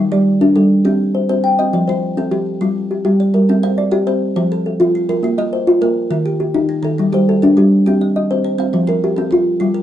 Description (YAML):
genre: southern african traditional, mbira-style interlocking cycle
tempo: 137 BPM (dotted quarters)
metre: 12/8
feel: straight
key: C dorian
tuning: A4 = 440 Hz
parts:
  - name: kalimba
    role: arpeggios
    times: 0.0-9.8 s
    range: Eb3 to F5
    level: -15 LUFS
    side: left 2 dB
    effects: none
  - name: kalimba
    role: arpeggios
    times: 0.0-9.8 s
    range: Eb3 to G5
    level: -16 LUFS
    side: right 2 dB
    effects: none
room: moderate studio reverb, RT60 0.6 s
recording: heard from further back in the room, nothing above 10.7 kHz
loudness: -13 LUFS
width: side -11 dB against mid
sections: 0.0-3.5 A section; 3.5-9.8 B section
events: none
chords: 0.0 Gm; 0.9 Cm; 1.7 F; 2.6 Gm; 3.5 Cm; 4.4 F; 5.2 Bb5; 6.1 Eb; 7.0 Gm; 7.9 Cm; 8.7 F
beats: 0.41 0.85 1.29 | 1.73 2.17 2.61 3.05 | 3.49 3.93 4.37 4.80 | 5.24 5.68 6.12 6.55 | 6.99 7.43 7.86 8.30 | 8.74 9.17 9.61